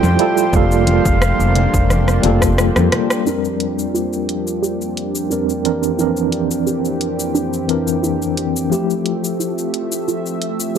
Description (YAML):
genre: sunset chillout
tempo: 88 BPM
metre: 4/4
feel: straight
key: unclear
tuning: A4 = 440 Hz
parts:
  - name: reedy silver concert flute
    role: melody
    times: 0.0-2.6 s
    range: F5 to G5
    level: -23 LUFS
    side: equal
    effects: vintage 12-bit sampler grit, analog delay
  - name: mellow tine electric piano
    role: accompaniment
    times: 0.0-10.8 s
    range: F2 to Bb4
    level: -19 LUFS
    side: moving between left 7 dB and right 7 dB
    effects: overdrive, medium stereo tremolo, auto-pan, tape echo
  - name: lush unison pad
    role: sustained chords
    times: 0.0-10.8 s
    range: F2 to E5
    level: -22 LUFS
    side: right 1 dB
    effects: chorus
  - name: mellow fretless electric bass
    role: bass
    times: 0.0-2.9 s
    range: F1 to F2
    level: -16 LUFS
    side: equal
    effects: none
  - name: deep house drum kit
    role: drums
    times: 0.0-10.8 s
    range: cabasa, hi-hat, rim click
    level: -23 LUFS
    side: left 1 dB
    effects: overdrive
  - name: congas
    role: percussion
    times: 0.0-3.1 s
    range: none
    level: -25 LUFS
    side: left 3 dB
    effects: none
  - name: electronic kick drum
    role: drums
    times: 0.5-2.5 s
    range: none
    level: -19 LUFS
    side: equal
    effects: overdrive
  - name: soft round pluck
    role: arpeggios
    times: 3.3-10.4 s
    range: D4 to G4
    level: -25 LUFS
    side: right 5 dB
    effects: none
room: digital ambience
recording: dry, gritty hardware recording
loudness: -15 LUFS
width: side -8 dB against mid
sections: 0.0-3.3 A section; 3.3-10.8 B section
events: drum fill 1.9-3.3; band accent 3.1-3.4; filter sweep on analog synth pad 3.3-10.8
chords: 0.0 Fmaj9; 0.5 Gm9/F; 3.3 Bb69/F; 5.6 C9/F; 8.7 Fmaj9